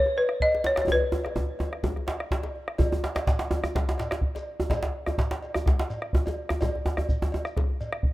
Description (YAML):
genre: west african traditional, West African drum ensemble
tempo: 126 BPM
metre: 4/4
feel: straight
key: B major pentatonic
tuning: A4 = 439 Hz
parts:
  - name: balafon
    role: melody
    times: 0.0-2.3 s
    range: B4 to D#5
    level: -24 LUFS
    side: left 1 dB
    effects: none
  - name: djembe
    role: percussion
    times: 0.1-7.8 s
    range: none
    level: -32 LUFS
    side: left 1 dB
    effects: none
  - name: cowbell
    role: percussion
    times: 0.2-7.9 s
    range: none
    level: -38 LUFS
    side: equal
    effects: none
  - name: bombo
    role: percussion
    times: 0.3-8.1 s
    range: none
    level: -28 LUFS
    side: equal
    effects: none
  - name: djembe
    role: percussion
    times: 0.6-7.5 s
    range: none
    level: -29 LUFS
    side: right 1 dB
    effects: none
  - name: shekere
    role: percussion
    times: 2.8-7.9 s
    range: none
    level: -39 LUFS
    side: equal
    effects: none
room: light reverb, studio ambience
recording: rough home demo mix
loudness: -25 LUFS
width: side -17 dB against mid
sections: 0.0-2.8 A section; 2.8-8.1 B section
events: drum fill 0.9-2.8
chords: none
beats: 0.40 | 0.88 1.36 1.84 2.31 | 2.79 3.27 3.75 4.23 | 4.70 5.18 5.66 6.13 | 6.61 7.09 7.57 8.04